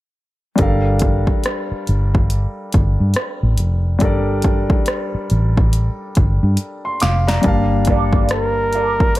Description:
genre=R&B, neo-soul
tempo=70 BPM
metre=4/4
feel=swing 60% on 16ths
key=G minor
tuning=A4 = 440 Hz
part: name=clear concert grand piano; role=accompaniment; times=0.6-9.2 s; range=G3 to D6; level=-22 LUFS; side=left 1 dB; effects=none
part: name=vintage muted fingered electric bass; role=bass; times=0.6-9.2 s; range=F1 to G2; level=-17 LUFS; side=equal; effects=none
part: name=punchy analog drum machine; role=drums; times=0.6-9.2 s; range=hi-hat, kick drum, rim click, snare drum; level=-18 LUFS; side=equal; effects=none
part: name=electric guitar through a small old amp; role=second line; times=7.9-9.2 s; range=Bb3 to D5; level=-24 LUFS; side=right 7 dB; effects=wah, wide subtle chorus
part: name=warm flugelhorn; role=melody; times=8.3-9.2 s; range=Bb4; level=-18 LUFS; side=right 1 dB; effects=none
room=little or no reverb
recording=none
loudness=-15 LUFS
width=side -16 dB against mid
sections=0.6-7.4 A section; 7.4-9.2 B section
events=drum fill 6.6-7.4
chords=0.6 Gm9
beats=| 0.58 1.44 2.30 3.15 | 4.01 4.87 5.73 6.58 | 7.44 8.30 9.15

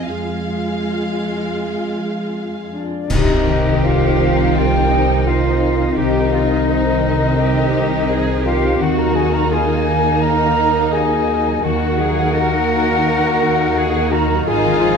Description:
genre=cinematic, emotional film score for orchestra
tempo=84 BPM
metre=4/4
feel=rubato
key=C minor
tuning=A4 = 440 Hz
part: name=warm symphonic violin section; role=melody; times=0.0-15.0 s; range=Eb4 to F5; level=-28 LUFS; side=left 6 dB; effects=none
part: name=warm chamber violin section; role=second line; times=0.0-15.0 s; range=Bb3 to Ab4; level=-26 LUFS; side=left 1 dB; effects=none
part: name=warm symphonic viola section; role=accompaniment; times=0.0-15.0 s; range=Eb3 to F4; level=-23 LUFS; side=right 1 dB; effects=none
part: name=concert harp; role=arpeggios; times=0.0-15.0 s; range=F2 to C6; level=-22 LUFS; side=left 6 dB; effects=none
part: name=rich symphonic cello section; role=bass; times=0.0-15.0 s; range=F2 to Bb4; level=-25 LUFS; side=right 3 dB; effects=none
part: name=mellow clarinet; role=second line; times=2.7-15.0 s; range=D4 to Bb4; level=-23 LUFS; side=equal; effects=none
part: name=small flute group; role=second line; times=2.7-15.0 s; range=D5 to Bb5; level=-20 LUFS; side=left 2 dB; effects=none
part: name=dark symphonic double bass section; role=bass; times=3.1-15.0 s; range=Ab1 to Eb2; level=-21 LUFS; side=right 4 dB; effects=none
part: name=clash cymbals and concert bass drum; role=percussion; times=3.1-4.5 s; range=none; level=-23 LUFS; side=equal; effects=none
room=moderate scoring stage reverb, RT60 1.7 s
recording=dark, warm production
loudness=-14 LUFS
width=side -6 dB against mid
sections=0.0-3.1 A section; 3.1-15.0 A section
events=band accent 3.1-3.8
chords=0.0 Fm; 3.1 Cm; 8.8 Ebm; 14.5 Ab5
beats=| 0.07 0.82 1.59 2.35 | 3.10 3.83 4.55 5.26 | 5.96 6.66 7.37 8.08 | 8.80 9.51 10.21 10.93 | 11.64 12.35 13.06 13.76 | 14.47

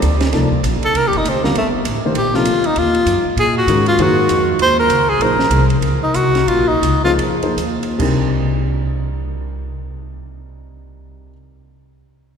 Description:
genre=modal jazz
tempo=138-197 BPM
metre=4/4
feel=swing 61% on 8ths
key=C minor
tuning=A4 = 442 Hz
part: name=upright bass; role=bass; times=0.0-11.3 s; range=G1 to Bb2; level=-19 LUFS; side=equal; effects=none
part: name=compact cocktail drum kit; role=drums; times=0.0-8.1 s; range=crash cymbal, hi-hat, kick drum, ride cymbal, snare drum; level=-26 LUFS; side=right 3 dB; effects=none
part: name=warm baby grand piano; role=accompaniment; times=0.3-11.3 s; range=C3 to D5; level=-22 LUFS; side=equal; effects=none
part: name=breathy tenor saxophone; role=melody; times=0.8-7.1 s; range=A3 to C5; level=-16 LUFS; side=left 1 dB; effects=none
room=wet cathedral reverb, RT60 4.4 s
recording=recorded in a church or concert hall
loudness=-13 LUFS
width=side -7 dB against mid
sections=0.0-8.0 A section; 8.0-11.5 B section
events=tenor saxophone solo 0.0-8.0; slowing down 5.2-8.0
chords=0.0 Cm9; 2.8 Ebm9; 8.0 Cm9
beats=0.01 | 0.32 0.62 0.93 1.23 | 1.54 1.84 2.15 2.46 | 2.76 3.06 3.37 3.67 | 3.98 4.28 4.59 4.89 | 5.20 5.50 5.82 6.14 | 6.47 6.81 7.18 7.57 | 7.99 8.42 8.86 9.29 | 9.73 10.16 10.60 11.03

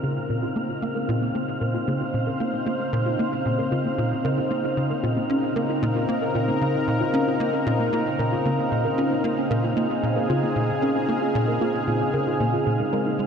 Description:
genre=ambient, sequencer-driven space music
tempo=114 BPM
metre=4/4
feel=straight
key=Bb minor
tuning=A4 = 440 Hz
part: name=lush unison pad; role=sustained chords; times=0.0-13.3 s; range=Db3 to C5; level=-25 LUFS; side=equal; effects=chorus
part: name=soft round pluck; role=arpeggios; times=0.0-13.2 s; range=Ab3 to Bb4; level=-31 LUFS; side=equal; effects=chorus, auto-pan, analog delay
part: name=tight sequencer bass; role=riff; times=0.0-13.3 s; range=Bb2 to Db4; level=-26 LUFS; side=equal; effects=ensemble chorus, analog delay
part: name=wind-like tuned noise texture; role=texture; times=0.0-13.3 s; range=F5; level=-32 LUFS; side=right 1 dB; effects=built-in reverb
room=wet lush hall reverb, RT60 2.7 s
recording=dreamy mix soaked in reverb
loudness=-21 LUFS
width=side -7 dB against mid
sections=0.0-13.3 A section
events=filter sweep on synth arpeggio sound 0.0-13.3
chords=0.0 Bbmadd9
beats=0.30 | 0.82 1.35 1.88 2.40 | 2.93 3.45 3.98 4.51 | 5.03 5.56 6.09 6.61 | 7.14 7.67 8.19 8.72 | 9.24 9.77 10.30 10.82 | 11.35 11.88 12.40 12.93

